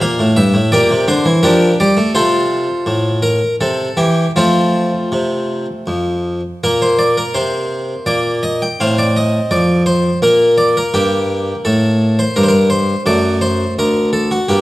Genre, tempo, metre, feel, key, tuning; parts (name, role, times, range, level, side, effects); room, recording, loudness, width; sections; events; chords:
classical, baroque-style suite movement for harpsichord; 84 BPM; 3/4; rubato; F major, Bb major from 6.6 s; A4 = 440 Hz
harpsichord; solo; 0.0-14.6 s; D2 to G5; -12 LUFS; equal
wet recital hall reverb, RT60 1.7 s; -12 LUFS; side -17 dB against mid
0.0-6.6 A section; 6.6-14.6 A section
0.0 Gm; 2.1 F/C; 3.6 C; 4.4 F; 6.6 Bb69; 8.8 F/A; 10.2 N.C.; 10.9 Gm; 13.1 D/F#